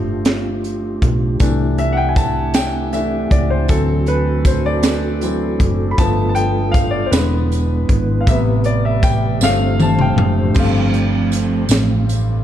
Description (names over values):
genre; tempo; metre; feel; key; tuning
slow gospel; 52 BPM (dotted quarters); 6/8; straight; unclear; A4 = 440 Hz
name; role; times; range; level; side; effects
clear concert grand piano; accompaniment; 0.0-12.4 s; G2 to B5; -20 LUFS; left 3 dB; none
mellow tonewheel organ; sustained chords; 0.0-12.1 s; C3 to C5; -22 LUFS; right 3 dB; fast rotary speaker, chorus vibrato
hollow-body short-scale fingered electric bass; bass; 0.0-12.4 s; E1 to D2; -19 LUFS; equal; none
crisp fusion drum kit; drums; 0.3-12.3 s; crash cymbal, hi-hat, kick drum, snare drum, toms; -18 LUFS; equal; none
tambourine; percussion; 1.4-12.4 s; none; -31 LUFS; right 7 dB; none
room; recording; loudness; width
light reverb; dark, warm production; -14 LUFS; side -11 dB against mid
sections
0.0-10.6 A section; 10.6-12.4 B section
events
grand piano solo 0.0-10.6; drum fill 9.4-10.6; tonewheel organ solo 10.6-12.4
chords
0.0 G9sus4; 1.4 C69; 3.7 D7; 6.0 G9; 7.1 E7; 8.3 Am9; 9.4 G9sus4